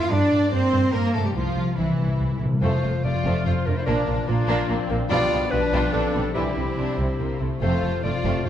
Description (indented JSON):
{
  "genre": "cinematic, heroic adventure film score",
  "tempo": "144 BPM",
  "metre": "3/4",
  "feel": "straight",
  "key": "F major",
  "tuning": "A4 = 440 Hz",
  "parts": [
    { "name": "warm symphonic violin section", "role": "melody", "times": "0.0-8.5 s", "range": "Bb3 to F5", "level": "-33 LUFS", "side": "left 3 dB", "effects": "none" },
    { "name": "warm symphonic violin section", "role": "second line", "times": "0.0-8.5 s", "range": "G3 to F5", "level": "-30 LUFS", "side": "equal", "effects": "none" },
    { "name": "warm studio viola section", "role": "accompaniment", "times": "0.0-8.5 s", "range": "E3 to A4", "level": "-30 LUFS", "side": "right 1 dB", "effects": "none" },
    { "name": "concert harp", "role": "arpeggios", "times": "0.0-8.5 s", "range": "F2 to A5", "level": "-28 LUFS", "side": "left 6 dB", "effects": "none" },
    { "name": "rich symphonic cello section", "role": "bass", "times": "0.0-8.5 s", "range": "F2 to F4", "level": "-27 LUFS", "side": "right 2 dB", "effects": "none" },
    { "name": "rich symphonic double bass section", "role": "bass", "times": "0.1-8.5 s", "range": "F1 to G2", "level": "-26 LUFS", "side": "right 2 dB", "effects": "none" },
    { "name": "timpani", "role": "percussion", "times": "1.8-2.6 s", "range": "C3", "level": "-27 LUFS", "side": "equal", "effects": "none" },
    { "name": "clear clarinet", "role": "second line", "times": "2.6-8.5 s", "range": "F4 to D5", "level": "-28 LUFS", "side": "left 2 dB", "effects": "none" },
    { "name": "bright trombone section", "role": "sustained chords", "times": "2.6-7.8 s", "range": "C3 to D4", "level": "-32 LUFS", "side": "right 3 dB", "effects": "none" }
  ],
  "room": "wet scoring stage reverb, RT60 1.6 s",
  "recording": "dark, warm production",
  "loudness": "-20 LUFS",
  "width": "side -10 dB against mid",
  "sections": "0.0-2.6 A section; 2.6-8.5 A section",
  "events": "timpani fill 1.8-2.6",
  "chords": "0.1 Gm; 1.4 Csus4; 1.8 C; 2.6 F; 3.9 Bb; 5.1 G7/B; 6.4 C; 7.6 F"
}